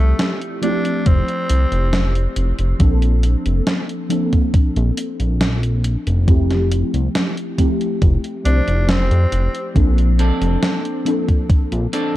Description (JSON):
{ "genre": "vaporwave", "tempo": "69 BPM", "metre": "4/4", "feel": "straight", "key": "F major", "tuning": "A4 = 442 Hz", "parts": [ { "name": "raspy tenor saxophone", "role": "melody", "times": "0.0-2.4, 8.5-9.8 s", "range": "A3 to D4", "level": "-26 LUFS", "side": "equal", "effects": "tape echo" }, { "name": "mellow FM electric piano", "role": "accompaniment", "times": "0.0-12.2 s", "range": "F3 to C5", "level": "-22 LUFS", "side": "left 1 dB", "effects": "phaser, ensemble chorus, tape echo" }, { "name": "chorused synth bass", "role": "bass", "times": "0.0-11.9 s", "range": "F1 to F2", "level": "-16 LUFS", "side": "equal", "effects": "none" }, { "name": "gated 80s digital drum machine", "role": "drums", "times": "0.2-12.1 s", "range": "hi-hat, snare drum", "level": "-22 LUFS", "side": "equal", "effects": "gated reverb, gated reverb snare" }, { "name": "electronic kick drum", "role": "drums", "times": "1.1-11.7 s", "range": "none", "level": "-14 LUFS", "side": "equal", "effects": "none" }, { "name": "clean electric guitar", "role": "riff", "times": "10.2-12.2 s", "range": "C4 to A4", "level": "-23 LUFS", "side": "right 1 dB", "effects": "wide subtle chorus, tape echo" } ], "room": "little or no reverb", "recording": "dark, warm production", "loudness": "-15 LUFS", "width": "side -15 dB against mid", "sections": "0.0-12.2 A section", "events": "none", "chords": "0.0 Fmaj9; 2.8 Bbmaj9; 6.3 Fmaj9; 9.8 Bbmaj9" }